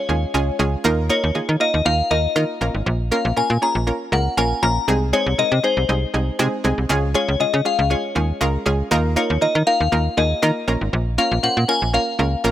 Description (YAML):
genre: dance-pop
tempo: 119 BPM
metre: 4/4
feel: straight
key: Db major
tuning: A4 = 440 Hz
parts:
  - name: glassy synth bell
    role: melody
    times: 0.0-12.5 s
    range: C5 to Bb5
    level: -21 LUFS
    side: left 3 dB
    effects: chorus, phaser, tape echo
  - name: analog pluck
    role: accompaniment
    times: 0.0-12.5 s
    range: Ab3 to C5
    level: -22 LUFS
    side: right 2 dB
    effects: chorus
  - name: slap-like FM bass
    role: bass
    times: 0.1-12.5 s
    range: Ab1 to Eb3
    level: -20 LUFS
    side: equal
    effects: none
room: little or no reverb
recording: none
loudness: -17 LUFS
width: side -12 dB against mid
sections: 0.0-12.5 A section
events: none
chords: 0.0 Db; 0.8 Ebsus2; 2.6 Bbm; 4.9 Ab/C; 6.9 Db; 8.9 Ebsus2; 10.7 Bbm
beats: 0.34 | 0.85 1.35 1.85 2.36 | 2.86 3.37 3.87 4.38 | 4.88 5.38 5.89 6.39 | 6.90 7.40 7.91 8.41 | 8.91 9.42 9.92 10.43 | 10.93 11.43 11.94 12.44